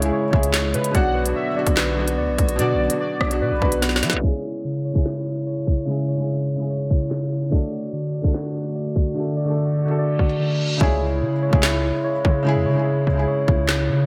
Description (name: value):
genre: hip hop, drill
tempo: 146 BPM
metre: 4/4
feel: half-time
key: C# phrygian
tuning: A4 = 442 Hz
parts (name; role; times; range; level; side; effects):
- warm velvety synth lead; second line; 0.0-4.2 s; B4 to F#5; -30 LUFS; equal; chorus, delay
- felt-muted upright piano; accompaniment; 0.0-14.1 s; B2 to E5; -30 LUFS; equal; none
- hollow soft pad; sustained chords; 0.0-4.2, 7.5-14.1 s; C#3 to F#4; -32 LUFS; equal; chorus
- mellow tine electric piano; arpeggios; 0.0-14.1 s; C#3 to D5; -25 LUFS; equal; delay
- hard-hitting 808-style bass; bass; 0.0-4.2, 10.8-14.1 s; B1 to F#3; -26 LUFS; equal; none
- drill drum kit; drums; 0.0-13.8 s; handclaps, hi-hat, kick drum, rim click, snare drum; -23 LUFS; equal; gated reverb
- reverse cymbal; sound effects; 10.2-10.8 s; none; -33 LUFS; equal; none
room: moderate plate reverb, RT60 2.0 s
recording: bright 1980s-style digital production, low-pass filter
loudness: -21 LUFS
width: mono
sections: 0.0-4.2 A section; 4.2-10.8 B section; 10.8-14.1 C section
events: drum fill 3.8-4.2; filter sweep 4.2-10.8; reverse cymbal 10.2-10.8; hi-hats muted 10.8-14.1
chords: 0.0 C#m; 0.9 Bm; 4.2 C#m; 7.5 D; 10.8 C#m